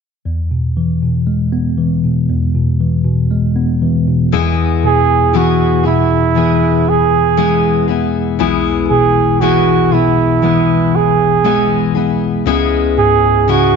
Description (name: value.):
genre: pop.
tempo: 59 BPM.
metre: 4/4.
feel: straight.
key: unclear.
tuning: A4 = 438 Hz.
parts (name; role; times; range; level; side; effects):
tine electric piano; accompaniment; 0.3-13.8 s; B1 to B3; -14 LUFS; left 1 dB; fast stereo tremolo.
picked steel-string acoustic guitar; arpeggios; 4.3-13.8 s; C#3 to G#4; -16 LUFS; left 10 dB; none.
warm flugelhorn; melody; 4.9-13.8 s; E4 to G#4; -14 LUFS; right 9 dB; none.
room: moderate echo chamber reverb, RT60 1.6 s, studio reverb.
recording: 1960s-style stereo with parts hard left and right, nothing above 7.7 kHz.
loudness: -11 LUFS.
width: side -6 dB against mid.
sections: 0.3-4.3 A section; 4.3-13.8 B section.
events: none.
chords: 0.3 E; 12.5 C#m7.